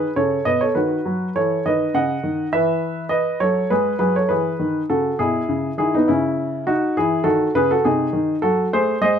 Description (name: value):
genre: classical, baroque-style suite movement for grand piano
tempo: 68 BPM (dotted quarters)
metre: 12/8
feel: rubato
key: E major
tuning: A4 = 439 Hz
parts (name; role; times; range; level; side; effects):
- warm baby grand piano; solo; 0.0-9.2 s; B2 to F#5; -17 LUFS; equal; none
room: light reverb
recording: dark, warm production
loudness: -17 LUFS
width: side -8 dB against mid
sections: 0.0-9.2 A section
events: none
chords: 0.0 E (rootless); 0.8 B7/D#; 2.6 E; 6.1 C#m; 7.8 G#7/B#